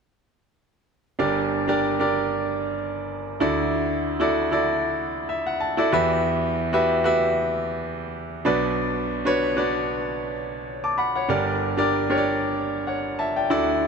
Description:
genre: pop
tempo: 95 BPM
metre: 4/4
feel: swing 55% on 16ths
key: unclear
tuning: A4 = 439 Hz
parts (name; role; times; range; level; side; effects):
- clear concert grand piano; accompaniment; 1.2-13.9 s; G1 to D6; -21 LUFS; equal; none
room: moderate lush hall reverb, RT60 2.7 s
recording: none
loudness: -21 LUFS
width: side -5 dB against mid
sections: 1.2-13.9 A section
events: grand piano fill 5.0-6.2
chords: 1.2 Gm; 3.4 Dadd9; 5.9 Emadd9; 8.5 Bm; 11.3 Gm

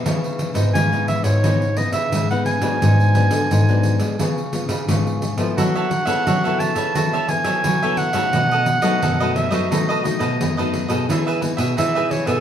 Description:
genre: samba and choro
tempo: 87 BPM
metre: 4/4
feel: straight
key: unclear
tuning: A4 = 440 Hz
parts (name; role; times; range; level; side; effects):
- nylon-string guitar; accompaniment; 0.0-12.4 s; F#2 to A4; -24 LUFS; left 4 dB; none
- nylon-string guitar; bass; 0.1-12.4 s; G#2 to B3; -22 LUFS; equal; none
- pandeiro; percussion; 0.1-12.4 s; none; -24 LUFS; right 1 dB; none
- warm clarinet; melody; 0.7-12.4 s; A4 to A5; -22 LUFS; right 2 dB; none
- cavaquinho; accompaniment; 5.6-12.4 s; D#4 to E5; -25 LUFS; right 3 dB; none
room: wet studio reverb, RT60 0.7 s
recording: band playing live in one room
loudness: -17 LUFS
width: side -9 dB against mid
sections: 0.0-12.4 A section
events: none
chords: 0.1 C#m9; 2.8 G#m7b5; 4.2 C#7; 5.6 F#m11; 8.3 B7; 11.1 Emaj7

